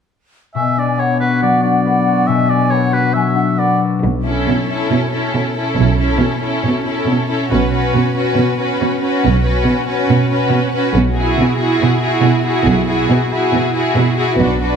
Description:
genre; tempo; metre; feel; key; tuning
cinematic; 139 BPM; 4/4; straight; B dorian; A4 = 440 Hz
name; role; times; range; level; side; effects
concert harp; arpeggios; 0.5-4.0 s; B2 to B4; -19 LUFS; left 7 dB; none
clear oboe; second line; 0.6-3.8 s; B4 to E5; -20 LUFS; right 2 dB; none
dark clarinet; second line; 0.6-3.8 s; B3; -20 LUFS; left 1 dB; none
large flute ensemble; second line; 0.6-3.8 s; F#5 to G#5; -19 LUFS; left 1 dB; none
clear symphonic cello section; bass; 4.0-14.8 s; B2; -17 LUFS; right 3 dB; none
rich symphonic double bass section; bass; 4.0-14.7 s; B1; -18 LUFS; right 3 dB; none
rich symphonic violin section; second line; 4.2-14.8 s; E4 to F#4; -21 LUFS; left 4 dB; none
rich symphonic viola section; accompaniment; 4.2-14.8 s; C#4 to E4; -20 LUFS; right 3 dB; none
warm symphonic violin section; melody; 4.3-14.8 s; G#4 to B4; -22 LUFS; left 4 dB; none
room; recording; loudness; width
moderate scoring stage reverb, RT60 1.6 s; none; -13 LUFS; side -7 dB against mid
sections
0.6-4.0 A section; 4.0-14.8 B section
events
build-up 4.0-14.8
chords
0.6 Bm; 4.0 A/B; 10.9 Eadd9/B

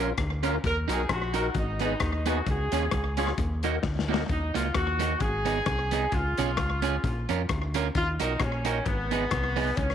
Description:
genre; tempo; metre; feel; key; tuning
ska; 131 BPM; 4/4; swing 55% on 8ths; Eb minor; A4 = 441 Hz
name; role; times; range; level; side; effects
electric guitar at the edge of break-up; accompaniment; 0.0-9.7 s; Bb3 to Bb4; -31 LUFS; right 10 dB; none
tonewheel organ; stabs; 0.0-4.3 s; Db4 to Eb5; -35 LUFS; left 10 dB; overdrive, chorus vibrato, slow rotary speaker
fingered electric bass; bass; 0.0-9.9 s; Ab1 to F2; -30 LUFS; equal; none
crunchy breakbeat drum kit; drums; 0.2-9.9 s; hi-hat, kick drum, rim click, snare drum; -31 LUFS; left 3 dB; slapback echo
warm horn section; melody; 0.7-9.9 s; Cb4 to Bb4; -30 LUFS; equal; none
room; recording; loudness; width
moderate spring reverb, RT60 1.7 s, small room ambience; 1960s-style stereo with parts hard left and right; -25 LUFS; side -9 dB against mid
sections
0.0-4.3 A section; 4.3-9.9 A section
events
drum fill 3.8-4.3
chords
0.0 Bbm; 0.6 Ebm; 1.5 Abm; 2.5 Db; 3.4 Ebm; 5.2 Abm; 6.1 Db; 7.0 Bbm; 8.0 Ebm; 8.9 Abm

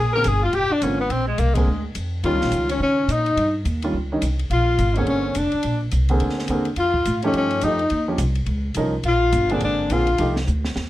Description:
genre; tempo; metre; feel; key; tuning
jazz, small-group swing and bop; 211 BPM; 4/4; swing 60% on 8ths; unclear; A4 = 440 Hz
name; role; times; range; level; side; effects
breathy tenor saxophone; melody; 0.0-10.4 s; Ab3 to Bb4; -21 LUFS; left 2 dB; none
breathy alto saxophone; second line; 0.0-10.4 s; Ab3 to Bb4; -27 LUFS; equal; none
upright bass; bass; 0.0-10.9 s; F1 to Db3; -23 LUFS; equal; none
warm upright piano; accompaniment; 0.2-10.4 s; D3 to Bb4; -25 LUFS; right 1 dB; none
compact cocktail drum kit; drums; 0.2-10.8 s; hi-hat, kick drum, ride cymbal, snare drum; -33 LUFS; equal; none
room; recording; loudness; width
light reverb; none; -18 LUFS; side -15 dB against mid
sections
0.0-10.9 A section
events
band accent 1.5; drum fill 10.5-10.9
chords
0.0 Bb9; 2.2 Eb9; 4.5 Bb9; 6.8 F9; 7.9 Eb7sus2; 9.1 Bb9; 10.2 F9

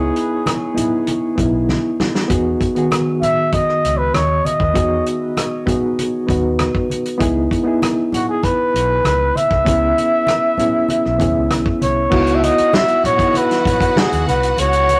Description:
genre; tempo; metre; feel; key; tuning
lush 1970s-style soul; 98 BPM; 4/4; straight; unclear; A4 = 439 Hz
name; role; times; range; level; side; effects
breathy flugelhorn; melody; 0.0-15.0 s; F#4 to E5; -20 LUFS; equal; tape echo
reed electric piano; accompaniment; 0.0-15.0 s; D#3 to B4; -22 LUFS; equal; fast tremolo
vintage muted fingered electric bass; bass; 0.0-14.9 s; B1 to E2; -24 LUFS; equal; none
warm soul drum kit; drums; 0.2-15.0 s; crash cymbal, hi-hat, kick drum, rim click, snare drum; -23 LUFS; equal; none
congas; percussion; 0.5-15.0 s; none; -30 LUFS; equal; none
rich studio string section; second line; 12.1-15.0 s; F#4 to F#5; -27 LUFS; equal; none
room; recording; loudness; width
moderate studio reverb, RT60 0.6 s; rough rehearsal-room recording, warm saturation; -17 LUFS; mono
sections
0.0-12.1 A section; 12.1-15.0 B section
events
drum fill 1.7-2.3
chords
0.0 C#m9 (rootless); 2.3 Emaj9 (rootless); 7.2 C#m9; 12.1 C#m11

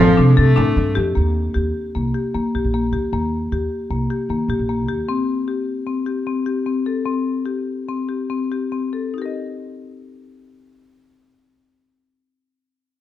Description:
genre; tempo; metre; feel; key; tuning
contemporary instrumental, chamber music in an uneven meter; 137-154 BPM; 5/4; straight; Eb lydian; A4 = 441 Hz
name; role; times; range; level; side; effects
rich cello; melody; 0.0-0.8 s; F3; -18 LUFS; right 5 dB; none
rich viola; second line; 0.0-1.0 s; F3 to A3; -27 LUFS; right 1 dB; none
marimba with medium hard mallets; arpeggios; 0.0-12.4 s; Bb3 to Eb5; -21 LUFS; left 4 dB; none
upright bass; bass; 0.0-5.0 s; A1 to Eb3; -19 LUFS; right 1 dB; none
frame drum; percussion; 0.4-0.8 s; none; -25 LUFS; right 4 dB; none
room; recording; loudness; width
light reverb; close, detailed microphones; -18 LUFS; side -12 dB against mid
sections
0.0-1.2 A section; 1.2-9.1 B section; 9.1-13.0 C section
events
slowing down 5.9-9.1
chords
0.0 Dm7; 1.2 Eb; 5.1 C5; 9.1 Eb

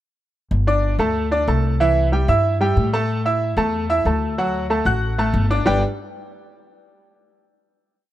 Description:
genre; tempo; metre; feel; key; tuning
latin, salsa; 186 BPM; 4/4; straight; unclear; A4 = 441 Hz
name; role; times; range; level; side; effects
upright bass; bass; 0.5-5.8 s; G1 to A2; -20 LUFS; equal; none
bright concert grand piano; accompaniment; 0.7-5.8 s; E3 to F#6; -19 LUFS; right 1 dB; none
room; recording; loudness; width
light reverb; none; -17 LUFS; side -13 dB against mid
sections
0.5-5.7 verse; 5.7-7.0 final chord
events
none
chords
0.5 Gsus2; 1.8 C; 3.1 A5; 4.4 D; 5.7 G5

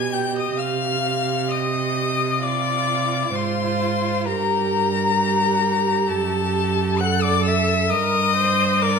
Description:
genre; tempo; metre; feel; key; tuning
classical, slow romantic movement for string quartet; 66 BPM; 4/4; rubato; C minor; A4 = 439 Hz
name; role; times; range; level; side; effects
rich violin; melody; 0.0-9.0 s; A5 to Ab6; -22 LUFS; left 7 dB; none
rich violin; second line; 0.0-9.0 s; A4 to Ab5; -26 LUFS; left 2 dB; none
clear viola; accompaniment; 0.0-9.0 s; F4 to C5; -25 LUFS; right 5 dB; none
warm cello; bass; 0.0-9.0 s; F#2 to C3; -24 LUFS; right 4 dB; none
room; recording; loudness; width
moderate recital hall reverb, RT60 1.3 s; minimal, uncompressed stereo recording; -18 LUFS; side -5 dB against mid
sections
0.0-9.0 A section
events
none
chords
0.0 G/B; 0.6 Cm; 4.3 Gm; 6.1 Em11/F#; 7.9 Gm

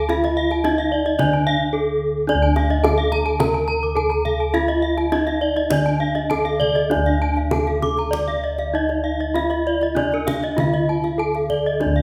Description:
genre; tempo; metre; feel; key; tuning
Balinese gamelan; 98-110 BPM; 4/4; straight; D pelog; A4 = 441 Hz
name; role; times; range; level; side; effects
gamelan-type bronze metallophone; melody; 0.0-12.0 s; D4 to D5; -24 LUFS; equal; none
gamelan-type bronze metallophone; arpeggios; 0.0-12.0 s; Bb4-40c to D6; -27 LUFS; equal; none
gamelan-type bossed gongs; bass; 0.0-12.0 s; D2 to E4+50c; -26 LUFS; equal; none
kendang; percussion; 0.1-12.0 s; none; -29 LUFS; equal; none
gamelan-type bronze metallophone; arpeggios; 0.4-12.0 s; D5 to D6; -28 LUFS; equal; none
room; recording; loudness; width
wet recital hall reverb, RT60 1.4 s; none; -20 LUFS; mono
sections
0.0-6.9 A section; 6.9-12.0 B section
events
break 1.5-2.3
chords
none

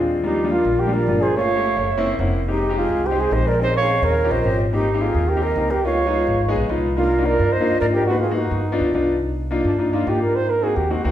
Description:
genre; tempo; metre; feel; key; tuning
jazz; 214 BPM; 4/4; straight; Eb major; A4 = 440 Hz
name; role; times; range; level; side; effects
breathy trumpet; melody; 0.0-11.1 s; Bb3 to Db5; -22 LUFS; right 3 dB; none
breathy jazz flute; second line; 0.0-8.7 s; Gb4 to F5; -26 LUFS; left 2 dB; none
clear grand piano; accompaniment; 0.0-11.1 s; G3 to Cb6; -22 LUFS; left 2 dB; none
upright bass; bass; 0.0-11.1 s; F1 to Ab2; -24 LUFS; equal; none
room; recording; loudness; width
wet recital hall reverb, RT60 1.3 s; recorded in a church or concert hall; -17 LUFS; side -11 dB against mid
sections
0.2-9.2 A section; 9.2-11.1 B section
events
grand piano fill 1.6-2.5, 6.6-7.0; trumpet solo 9.2-11.1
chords
0.2 Ebmaj9; 1.4 Gm7b5; 1.9 Gb7#11; 2.5 Fm9; 3.6 Bbm11; 4.2 Eb13; 4.7 Abmaj9; 5.9 Db9; 7.0 Cm11; 8.1 Abm7; 8.7 G7b13; 9.2 Cm11; 10.3 Ab9

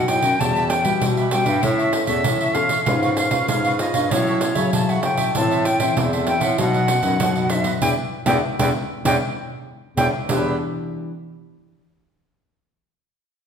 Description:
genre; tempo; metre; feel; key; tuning
samba and choro; 97 BPM; 4/4; straight; E minor; A4 = 441 Hz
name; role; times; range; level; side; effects
concert flute; melody; 0.0-10.6 s; B4 to A5; -23 LUFS; left 1 dB; none
cavaquinho; accompaniment; 0.0-10.6 s; D4 to F#5; -28 LUFS; right 4 dB; none
nylon-string guitar; accompaniment; 0.0-11.1 s; F#2 to B4; -25 LUFS; left 4 dB; none
warm bass clarinet; bass; 0.0-10.6 s; E2 to C#3; -24 LUFS; equal; none
pandeiro; percussion; 0.1-10.4 s; none; -24 LUFS; right 2 dB; none
room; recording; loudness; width
wet recital hall reverb, RT60 1.4 s; recorded in a church or concert hall; -17 LUFS; side -7 dB against mid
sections
0.0-10.3 A section; 10.3-12.8 B section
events
band accent 7.8-10.3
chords
0.4 Emadd9; 1.6 A; 2.9 C#7/G#; 4.1 F#m7/A; 5.3 Am; 6.6 B; 7.8 Em7

